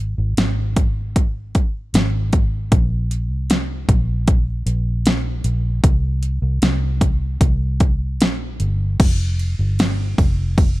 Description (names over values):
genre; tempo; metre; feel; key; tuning
pop ballad; 77 BPM; 4/4; straight; F minor; A4 = 443 Hz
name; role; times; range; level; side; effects
vintage muted fingered electric bass; bass; 0.0-10.8 s; F1 to C2; -20 LUFS; equal; none
pop drum kit; drums; 0.4-10.8 s; crash cymbal, hi-hat, kick drum, ride cymbal, snare drum; -17 LUFS; equal; overdrive
room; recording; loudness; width
little or no reverb; dark, warm production; -16 LUFS; side -18 dB against mid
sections
0.0-9.0 A section; 9.0-10.8 B section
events
none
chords
none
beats
0.38 1.16 1.94 | 2.72 3.50 4.28 5.05 | 5.84 6.62 7.41 8.20 | 9.00 9.79 10.57